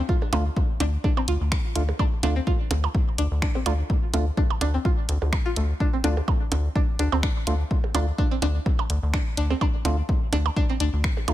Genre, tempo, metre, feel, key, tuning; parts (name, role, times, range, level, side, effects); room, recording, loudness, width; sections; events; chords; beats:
minimal techno; 126 BPM; 4/4; swing 55% on 16ths; D minor; A4 = 441 Hz
rubbery square bass; bass; 0.0-11.3 s; D2; -24 LUFS; equal; sidechain pumping
string-like resonator pluck; riff; 0.1-10.8 s; A3 to F4; -31 LUFS; equal; chorus, cassette tape, sidechain pumping, dub echo
electronic kick drum; drums; 0.1-11.1 s; -24 LUFS; equal; studio reverb
percussion blips; percussion; 0.2-11.3 s; -31 LUFS; right 7 dB; overdrive, studio reverb, digital delay
percussive organ stab; stabs; 0.3-11.3 s; A3 to F4; -32 LUFS; right 2 dB; chorus, digital delay
garage drum kit; drums; 0.3-11.3 s; finger snaps, hi-hat; -31 LUFS; equal; studio reverb
little or no reverb; -21 LUFS; side -14 dB against mid
0.0-11.3 A section
0.0 Dm
| 0.09 0.56 1.04 1.52 | 1.99 2.47 2.95 3.42 | 3.90 4.37 4.85 5.33 | 5.80 6.28 6.75 7.23 | 7.71 8.18 8.66 9.14 | 9.61 10.09 10.56 11.04